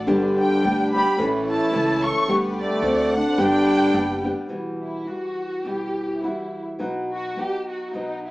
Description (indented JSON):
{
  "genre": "mexican folk, mariachi",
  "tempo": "106 BPM",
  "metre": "2/4",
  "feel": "swing 55% on 8ths",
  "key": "G major, E minor from 4.5 s",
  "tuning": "A4 = 440 Hz",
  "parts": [
    { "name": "flamenco guitar", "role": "accompaniment", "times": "0.0-8.3 s", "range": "E2 to A4", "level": "-24 LUFS", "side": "equal", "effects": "none" },
    { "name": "rich symphonic violin section", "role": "sustained chords", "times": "0.0-4.5 s", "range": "G3 to F#5", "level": "-32 LUFS", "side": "equal", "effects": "none" },
    { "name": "upright bass", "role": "bass", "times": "0.0-4.3 s", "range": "F#1 to D2", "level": "-31 LUFS", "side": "equal", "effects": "none" },
    { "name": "dark studio violin section", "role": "melody", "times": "0.4-8.3 s", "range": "D#4 to C#6", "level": "-26 LUFS", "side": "equal", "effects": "none" },
    { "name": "warm trumpet", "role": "second line", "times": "0.4-4.3 s", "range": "A3 to A4", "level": "-23 LUFS", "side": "equal", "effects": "none" }
  ],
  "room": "wet small room reverb, RT60 0.5 s",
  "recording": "heard from further back in the room, small speaker sound",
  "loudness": "-20 LUFS",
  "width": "side -19 dB against mid",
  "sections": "0.0-4.5 A section; 4.5-8.3 B section",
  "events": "none",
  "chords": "0.1 G; 1.2 A; 2.3 G/D; 2.8 D7; 3.4 G; 4.5 Emadd9; 6.8 B"
}